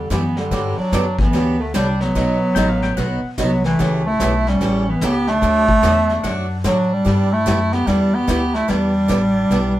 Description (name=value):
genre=country, western swing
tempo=147 BPM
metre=4/4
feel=swing 64% on 8ths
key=G major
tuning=A4 = 440 Hz
part: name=breathy bass clarinet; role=melody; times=0.0-9.8 s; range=D3 to B3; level=-18 LUFS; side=equal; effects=none
part: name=clear fiddle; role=second line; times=0.0-9.8 s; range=G3 to G4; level=-26 LUFS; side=right 2 dB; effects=none
part: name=upright bass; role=bass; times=0.0-9.8 s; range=A1 to A2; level=-23 LUFS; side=left 1 dB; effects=none
part: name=picked swing-style acoustic guitar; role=accompaniment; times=0.1-9.7 s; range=B2 to G4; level=-25 LUFS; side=right 2 dB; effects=none
part: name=vintage brush drum kit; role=drums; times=0.1-9.8 s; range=brushed snare drum, hi-hat, kick drum, snare drum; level=-24 LUFS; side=left 1 dB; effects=none
part: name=pedal steel guitar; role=second line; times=2.5-3.3, 5.8-6.6 s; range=E5 to G5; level=-28 LUFS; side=left 6 dB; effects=none
room=wet studio reverb, RT60 0.5 s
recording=band playing live in one room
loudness=-15 LUFS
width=side -14 dB against mid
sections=0.5-9.8 A section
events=none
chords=0.0 G6; 0.5 Gmaj7; 2.2 B; 3.8 A7; 5.4 D; 7.1 G6; 8.7 Em7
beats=0.10 | 0.52 0.92 1.33 1.74 | 2.15 2.56 2.97 3.38 | 3.79 4.20 4.61 5.01 | 5.42 5.83 6.24 6.65 | 7.05 7.46 7.87 8.28 | 8.69 9.10 9.50